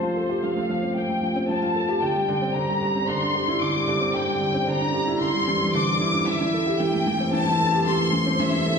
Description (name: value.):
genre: electronica.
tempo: 113 BPM.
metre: 4/4.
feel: straight.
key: unclear.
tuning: A4 = 443 Hz.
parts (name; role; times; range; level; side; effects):
clear symphonic violin section; melody; 0.0-8.8 s; C5 to D6; -24 LUFS; left 2 dB; low-pass filter.
felt-muted upright piano; riff; 0.0-8.8 s; D3 to A4; -23 LUFS; right 1 dB; none.
room: wet recital hall reverb, RT60 1.5 s.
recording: none.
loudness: -20 LUFS.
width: side -6 dB against mid.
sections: 0.0-8.8 A section.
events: build-up 0.0-8.8; filter sweep on violin section 0.0-8.8.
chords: 0.0 Fadd9; 2.0 Cadd9; 6.3 Am7.